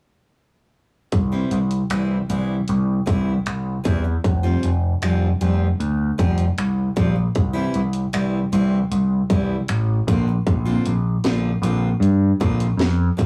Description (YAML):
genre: quiet-loud alternative rock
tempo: 77 BPM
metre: 4/4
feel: straight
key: C mixolydian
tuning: A4 = 440 Hz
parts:
  - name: growling picked electric bass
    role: bass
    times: 1.1-13.3 s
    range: F1 to G2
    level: -22 LUFS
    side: equal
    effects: overdrive
  - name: garage drum kit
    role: drums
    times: 1.1-13.3 s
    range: finger snaps, hi-hat, kick drum, snare drum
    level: -24 LUFS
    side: equal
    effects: none
  - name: picked steel-string acoustic guitar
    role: arpeggios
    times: 1.3-13.3 s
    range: D3 to F4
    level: -26 LUFS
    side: equal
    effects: none
room: light reverb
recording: rough rehearsal-room recording, tube saturation, small room ambience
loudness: -20 LUFS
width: mono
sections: 1.1-13.3 A section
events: none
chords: 1.1 C; 4.2 Fsus2; 7.4 C; 10.1 Bbadd9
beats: | 1.13 1.91 2.69 3.46 | 4.24 5.02 5.80 6.58 | 7.35 8.13 8.91 9.69 | 10.46 11.24 12.02 12.79